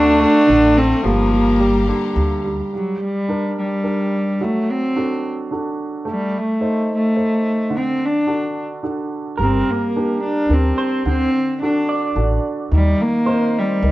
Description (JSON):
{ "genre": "acoustic folk-pop ballad", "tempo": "108 BPM", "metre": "3/4", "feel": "straight", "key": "G harmonic minor", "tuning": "A4 = 443 Hz", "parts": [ { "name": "rich cello", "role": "melody", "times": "0.0-13.9 s", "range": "F#3 to D4", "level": "-18 LUFS", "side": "equal", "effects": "none" }, { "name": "warm viola", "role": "second line", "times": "0.0-2.4 s", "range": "D3 to A3", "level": "-22 LUFS", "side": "left 2 dB", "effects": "none" }, { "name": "clear upright piano", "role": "accompaniment", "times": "0.0-13.9 s", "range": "D3 to C5", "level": "-24 LUFS", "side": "right 2 dB", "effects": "none" }, { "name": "clear studio string section", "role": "sustained chords", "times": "0.0-2.7 s", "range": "F#4 to C6", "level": "-32 LUFS", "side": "left 3 dB", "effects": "none" }, { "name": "electric guitar through a small old amp", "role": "arpeggios", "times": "0.0-0.7, 9.4-13.9 s", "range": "F#4 to D5", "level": "-25 LUFS", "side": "right 3 dB", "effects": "harmonic tremolo" }, { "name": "upright bass", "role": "bass", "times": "0.0-2.6, 9.4-13.9 s", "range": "G1 to Eb2", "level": "-19 LUFS", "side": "equal", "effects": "none" } ], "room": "moderate large studio reverb, RT60 1.2 s", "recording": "worn, warbling old tape, cassette tape, warbly pitch drift", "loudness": "-16 LUFS", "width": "side -17 dB against mid", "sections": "0.0-2.7 A section; 2.7-13.9 B section", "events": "none", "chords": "0.0 D7; 1.1 Gm7; 2.7 Gm; 4.4 D/F#; 6.1 Adim; 7.7 D; 9.4 Gm; 11.1 D; 12.7 Cm7/Eb", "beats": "0.50 | 1.05 1.60 2.16 | 2.72 3.28 3.84 | 4.39 4.95 5.50 | 6.06 6.61 7.17 | 7.72 8.28 8.83 | 9.39 9.95 10.50 | 11.05 11.61 12.16 | 12.71 13.26 13.81" }